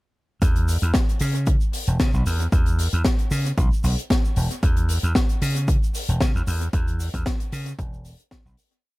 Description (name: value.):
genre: nu-disco, nu disco.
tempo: 114 BPM.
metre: 4/4.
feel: swing 54% on 16ths.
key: unclear.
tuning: A4 = 440 Hz.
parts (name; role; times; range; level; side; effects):
vintage slap bass; bass; 0.4-8.5 s; E1 to C#3; -22 LUFS; equal; none.
crisp fusion drum kit; drums; 0.4-8.8 s; hi-hat, shaker, snare drum; -27 LUFS; left 2 dB; dub echo.
electronic kick drum; drums; 0.4-8.4 s; none; -22 LUFS; equal; none.
room: little or no reverb.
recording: echo-heavy mix.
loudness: -19 LUFS.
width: side -20 dB against mid.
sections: 0.4-8.8 drop.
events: drop 0.4-8.8; fade-out 6.0-8.8.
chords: none.